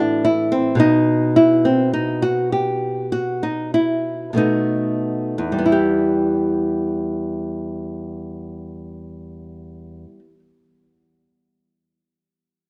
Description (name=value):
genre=classical, baroque-style dance for nylon-string guitar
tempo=43-56 BPM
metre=4/4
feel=rubato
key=E minor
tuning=A4 = 440 Hz
part: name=nylon-string guitar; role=solo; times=0.0-10.4 s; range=E2 to G4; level=-20 LUFS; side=equal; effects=none
room=light reverb, small room ambience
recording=dry, close 1970s-style studio recording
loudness=-19 LUFS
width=mono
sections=0.0-5.7 A section; 5.7-10.8 B section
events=slowing down 0.0-5.7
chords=0.0 Am; 0.8 B7; 5.7 Em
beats=| 0.81 1.94 3.12 4.36 | 5.71 6.98 8.24 9.52